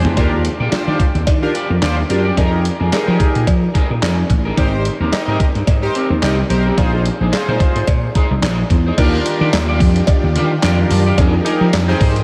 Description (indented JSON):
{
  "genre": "early-eighties boogie funk",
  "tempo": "109 BPM",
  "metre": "4/4",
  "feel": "swing 56% on 16ths",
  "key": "unclear",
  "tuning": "A4 = 444 Hz",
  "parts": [
    { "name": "chorused polysynth", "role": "accompaniment", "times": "0.0-12.1 s", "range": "D4 to Eb5", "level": "-24 LUFS", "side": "equal", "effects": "none" },
    { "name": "string machine, full ensemble", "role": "sustained chords", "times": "0.0-0.2, 9.0-12.2 s", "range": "Eb3 to Bb4", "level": "-26 LUFS", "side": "equal", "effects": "ensemble chorus" },
    { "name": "vintage slap bass", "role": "bass", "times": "0.0-12.2 s", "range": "Ab1 to F3", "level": "-19 LUFS", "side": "equal", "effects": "none" },
    { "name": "dusty soul sampler-style drum kit", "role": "drums", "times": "0.0-12.2 s", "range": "crash cymbal, handclaps, hi-hat, kick drum, snare drum, toms", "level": "-20 LUFS", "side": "equal", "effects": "none" },
    { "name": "electric guitar at the edge of break-up", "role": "riff", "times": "0.1-12.2 s", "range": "Ab3 to D5", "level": "-26 LUFS", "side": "equal", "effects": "lush chorus" },
    { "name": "cowbell", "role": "percussion", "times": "0.2-11.9 s", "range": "none", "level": "-30 LUFS", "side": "equal", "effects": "none" }
  ],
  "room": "moderate cathedral reverb, RT60 6.3 s",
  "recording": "dreamy mix soaked in reverb",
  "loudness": "-15 LUFS",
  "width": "mono",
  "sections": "0.2-9.0 A section; 9.0-12.2 B section",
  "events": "drum fill 0.0",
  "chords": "0.2 Ebmaj9; 2.4 Fm11; 4.6 Abmaj9; 6.8 Bb9sus4; 9.0 Ebmaj9; 11.2 Fm11"
}